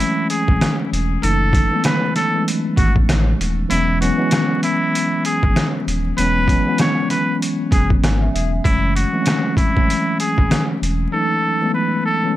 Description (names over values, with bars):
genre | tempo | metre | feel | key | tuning
hip hop, boom-bap hip-hop | 97 BPM | 4/4 | swing 59% on 16ths | unclear | A4 = 440 Hz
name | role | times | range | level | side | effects
trumpet with straight mute | melody | 0.0-12.3 s | E4 to C#5 | -21 LUFS | equal | high-pass filter, low-pass filter, ping-pong delay
mellow tine electric piano | accompaniment | 0.0-12.4 s | E3 to G#5 | -20 LUFS | left 1 dB | medium stereo tremolo, high-pass filter, low-pass filter
trip hop sampler-style drum kit | drums | 0.0-11.0 s | hi-hat, kick drum, rim click, snare drum | -19 LUFS | equal | none
saturated sub bass | bass | 0.5-11.1 s | D#1 to A1 | -20 LUFS | equal | none
room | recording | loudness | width
digital ambience | vinyl crackle | -15 LUFS | side -14 dB against mid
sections
0.0-12.4 A section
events
kick muted 3.7-4.9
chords
0.0 F#m7; 3.7 E6; 8.7 F#m7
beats
0.61 | 1.23 1.85 2.47 3.09 | 3.70 4.32 4.94 5.56 | 6.18 6.80 7.42 8.03 | 8.65 9.27 9.89 10.51 | 11.13 11.75 12.36